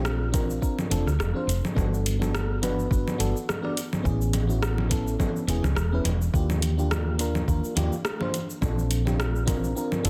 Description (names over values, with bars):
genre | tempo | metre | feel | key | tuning
sunset chillout | 105 BPM | 4/4 | swing 55% on 16ths | unclear | A4 = 439 Hz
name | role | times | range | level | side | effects
mellow FM electric piano | accompaniment | 0.0-10.1 s | Bb3 to D5 | -32 LUFS | equal | chorus, tape echo
woody fretless electric bass | bass | 0.0-10.1 s | E1 to Eb2 | -28 LUFS | equal | none
deep house drum kit | drums | 0.1-10.1 s | congas, hi-hat, rim click, shaker | -32 LUFS | equal | overdrive
electronic kick drum | drums | 0.3-9.6 s | none | -29 LUFS | equal | overdrive
room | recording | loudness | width
light reverb, digital ambience | dense, heavily limited modern master | -26 LUFS | mono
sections
0.0-10.1 A section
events
kick drops out 9.8-10.1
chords
0.0 Bbadd9; 1.8 Gmaj9; 4.0 Amaj9; 6.3 Ebmaj9; 8.6 Bbmaj9